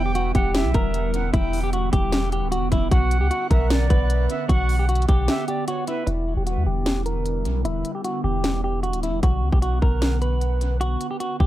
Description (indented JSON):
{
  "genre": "hip hop, trap",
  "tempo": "152 BPM",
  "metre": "4/4",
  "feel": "half-time",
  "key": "unclear",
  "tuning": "A4 = 440 Hz",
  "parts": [
    { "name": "clean electric guitar", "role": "melody", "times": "0.0-11.5 s", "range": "E4 to B4", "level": "-27 LUFS", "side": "equal", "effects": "low-pass filter, dub echo" },
    { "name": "silver concert flute", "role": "second line", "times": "0.0-6.1 s", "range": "B4 to G5", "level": "-32 LUFS", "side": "right 3 dB", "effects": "dub echo" },
    { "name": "airy breathy pad", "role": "sustained chords", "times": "0.0-11.5 s", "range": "D3 to F#5", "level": "-30 LUFS", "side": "right 1 dB", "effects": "chorus, phaser, low-pass filter" },
    { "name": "long sustained 808-style bass", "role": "bass", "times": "0.0-11.5 s", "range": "D1 to E2", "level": "-22 LUFS", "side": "equal", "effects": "none" },
    { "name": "trap drum kit", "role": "drums", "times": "0.2-11.5 s", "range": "hi-hat, kick drum, snare drum", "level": "-23 LUFS", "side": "equal", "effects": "none" }
  ],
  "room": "little or no reverb",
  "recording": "echo-heavy mix",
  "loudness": "-20 LUFS",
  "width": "side -14 dB against mid",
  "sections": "0.0-6.1 A section; 6.1-11.5 B section",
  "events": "break 5.3-6.1; filter sweep 6.1-11.5",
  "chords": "0.0 Em7; 2.9 Bm; 6.1 Em7; 9.2 Bm",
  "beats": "0.15 0.55 0.94 | 1.34 1.73 2.12 2.52 | 2.92 3.31 3.70 4.10 | 4.49 4.89 5.28 5.68 | 6.07 6.47 6.86 7.26 | 7.65 8.05 8.44 8.84 | 9.23 9.62 10.02 10.41 | 10.81 11.20"
}